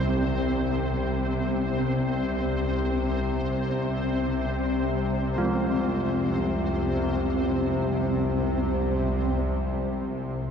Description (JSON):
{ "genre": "dark ambient drone", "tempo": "free time", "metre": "none", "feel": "none", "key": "unclear", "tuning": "A4 = 440 Hz", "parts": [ { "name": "muted symphonic cello section", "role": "sustained chords", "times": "0.0-10.5 s", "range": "C3 to C4", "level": "-40 LUFS", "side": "equal", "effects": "none" }, { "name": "carillon bells", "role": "arpeggios", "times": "0.0-10.5 s", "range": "Eb3 to F3", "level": "-33 LUFS", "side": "right 1 dB", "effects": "tape echo" }, { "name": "bowed-like drone", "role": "drone", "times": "0.0-10.5 s", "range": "C2 to C3", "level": "-26 LUFS", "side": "left 1 dB", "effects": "built-in reverb" }, { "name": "flickering grainy texture", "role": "texture", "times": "0.0-10.5 s", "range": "C4 to C5", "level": "-30 LUFS", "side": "right 1 dB", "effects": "built-in reverb, shimmer reverb" } ], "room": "wet huge ambient reverb, RT60 7.2 s", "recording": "dark, warm production", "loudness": "-24 LUFS", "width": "side -7 dB against mid", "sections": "0.0-9.4 A section; 9.4-10.5 B section", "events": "none", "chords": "0.0 C5" }